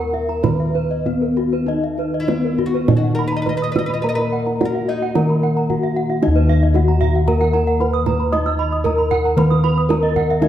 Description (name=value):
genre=Balinese gamelan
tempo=97-114 BPM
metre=4/4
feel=straight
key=Eb pelog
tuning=A4 = 440 Hz
part: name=gamelan-type bronze metallophone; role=melody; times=0.0-10.5 s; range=Cb4 to Eb5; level=-20 LUFS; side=equal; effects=none
part: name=oud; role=second line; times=0.0-6.0 s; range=Eb4 to Eb5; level=-28 LUFS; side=left 2 dB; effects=none
part: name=gamelan-type bronze metallophone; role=accompaniment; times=0.0-10.5 s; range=Eb3 to Eb4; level=-27 LUFS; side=left 2 dB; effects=none
part: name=gamelan-type bronze metallophone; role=arpeggios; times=0.0-10.3 s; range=Bb4 to Fb6+35c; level=-27 LUFS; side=right 7 dB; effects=none
part: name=gamelan-type bossed gongs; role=bass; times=0.0-10.5 s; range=Eb2 to Eb5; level=-20 LUFS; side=left 1 dB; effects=none
part: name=gamelan-type bronze metallophone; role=arpeggios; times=0.1-10.5 s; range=Gb4 to Fb6+35c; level=-27 LUFS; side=left 4 dB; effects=none
part: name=kendang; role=percussion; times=0.1-10.5 s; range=none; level=-24 LUFS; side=right 5 dB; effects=none
room=wet recital hall reverb, RT60 1.6 s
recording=dark, warm production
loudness=-15 LUFS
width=side -11 dB against mid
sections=0.0-6.2 A section; 6.2-10.5 B section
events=none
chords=none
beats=0.44 1.06 | 1.68 2.29 2.89 3.47 | 4.04 4.61 5.16 5.70 | 6.23 6.75 7.28 7.80 | 8.32 8.85 9.37 9.90 | 10.42